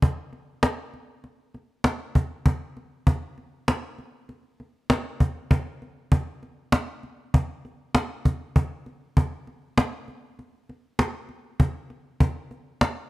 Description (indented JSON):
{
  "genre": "progressive instrumental, progressive",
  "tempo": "98 BPM",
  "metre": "5/4",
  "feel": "straight",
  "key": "none",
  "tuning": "none",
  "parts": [
    { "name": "cajon", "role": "drums", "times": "0.0-13.0 s", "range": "none", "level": "-21 LUFS", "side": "equal", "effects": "none" }
  ],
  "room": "studio reverb",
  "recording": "dry, close 1970s-style studio recording",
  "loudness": "-23 LUFS",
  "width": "side -19 dB against mid",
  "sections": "0.0-9.2 A section; 9.2-13.1 B section",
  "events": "none",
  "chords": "none"
}